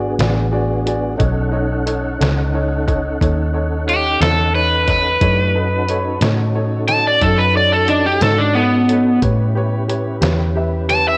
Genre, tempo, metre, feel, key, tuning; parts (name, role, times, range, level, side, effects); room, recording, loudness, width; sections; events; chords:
slow blues; 60 BPM (dotted quarters); 12/8; straight; A4 = 439 Hz
clear upright piano; accompaniment; 0.0-11.1 s; D#4 to E5; -26 LUFS; equal
tonewheel organ; sustained chords; 0.0-11.2 s; A3 to F#5; -27 LUFS; equal; slow rotary speaker, chorus vibrato
vintage muted fingered electric bass; bass; 0.0-11.2 s; G#1 to A2; -21 LUFS; equal
trip hop sampler-style drum kit; drums; 0.2-11.0 s; hi-hat, kick drum, snare drum; -24 LUFS; equal
crunchy overdriven guitar; melody; 3.9-11.2 s; B3 to A5; -17 LUFS; equal
light reverb; -16 LUFS; mono
0.0-11.2 A section
0.0 E9 (rootless); 1.2 B9; 9.2 A9